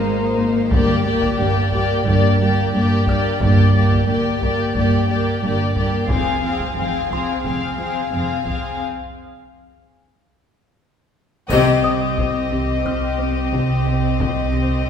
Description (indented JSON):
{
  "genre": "cinematic, suspense film score",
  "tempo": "89 BPM",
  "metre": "4/4",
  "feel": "straight",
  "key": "C minor",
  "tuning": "A4 = 437 Hz",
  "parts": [
    { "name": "warm studio violin section", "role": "melody", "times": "0.0-14.9 s", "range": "C5 to F5", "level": "-24 LUFS", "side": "left 6 dB", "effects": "none" },
    { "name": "clear studio violin section", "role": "second line", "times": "0.0-14.9 s", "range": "Eb4 to Ab4", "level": "-26 LUFS", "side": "left 4 dB", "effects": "none" },
    { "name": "warm studio viola section", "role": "accompaniment", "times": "0.0-14.9 s", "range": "Bb3 to C4", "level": "-23 LUFS", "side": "left 1 dB", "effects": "none" },
    { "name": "warm studio cello section", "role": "riff", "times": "0.0-14.7 s", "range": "F2 to C4", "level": "-25 LUFS", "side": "equal", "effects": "none" },
    { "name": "dark studio double bass section", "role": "bass", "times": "0.0-14.9 s", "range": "F1 to C2", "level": "-24 LUFS", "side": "right 2 dB", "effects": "none" },
    { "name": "warm studio cello section", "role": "bass", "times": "0.0-14.9 s", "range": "F2 to C3", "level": "-23 LUFS", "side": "right 2 dB", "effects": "none" },
    { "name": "taiko ensemble", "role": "drums", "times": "0.7-14.9 s", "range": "none", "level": "-26 LUFS", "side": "left 1 dB", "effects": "none" },
    { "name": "music box", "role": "texture", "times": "3.1-14.8 s", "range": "Eb5 to F6", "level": "-29 LUFS", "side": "left 2 dB", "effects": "none" },
    { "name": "triangle", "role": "percussion", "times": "11.5-12.8 s", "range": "none", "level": "-42 LUFS", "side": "left 3 dB", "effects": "none" }
  ],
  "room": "wet concert hall reverb, RT60 1.8 s",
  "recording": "heard from further back in the room",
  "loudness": "-16 LUFS",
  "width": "side -8 dB against mid",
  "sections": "0.0-11.5 A section; 11.5-14.9 B section",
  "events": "break 8.8-11.5; drum fill 10.8-11.5; band accent 11.5-12.2",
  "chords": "0.0 Abadd9; 0.7 Gm; 6.1 Fm; 8.8 N.C.; 11.5 Cm"
}